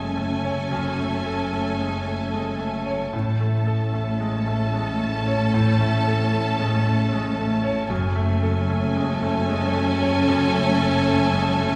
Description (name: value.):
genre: cinematic.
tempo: 75 BPM.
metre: 3/4.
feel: rubato.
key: unclear.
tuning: A4 = 440 Hz.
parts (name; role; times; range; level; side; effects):
warm symphonic violin section; melody; 0.0-11.8 s; G#5 to A5; -33 LUFS; equal; none.
warm symphonic violin section; second line; 0.0-11.8 s; A4; -33 LUFS; equal; none.
bright concert grand piano; accompaniment; 0.0-11.8 s; F#2 to C#5; -29 LUFS; equal; none.
warm symphonic viola section; accompaniment; 0.0-11.8 s; C#4; -32 LUFS; equal; none.
concert harp; arpeggios; 0.0-11.8 s; F#2 to G#5; -32 LUFS; equal; none.
warm studio double bass section; bass; 0.0-11.8 s; F#1 to A1; -30 LUFS; equal; none.
warm symphonic cello section; bass; 0.0-11.8 s; F#2 to A2; -29 LUFS; equal; none.
room: wet recital hall reverb, RT60 1.3 s.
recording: recorded in a church or concert hall.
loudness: -22 LUFS.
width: mono.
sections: 0.0-11.8 A section.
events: none.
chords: 0.0 F#madd9; 3.1 A; 7.9 F#madd9.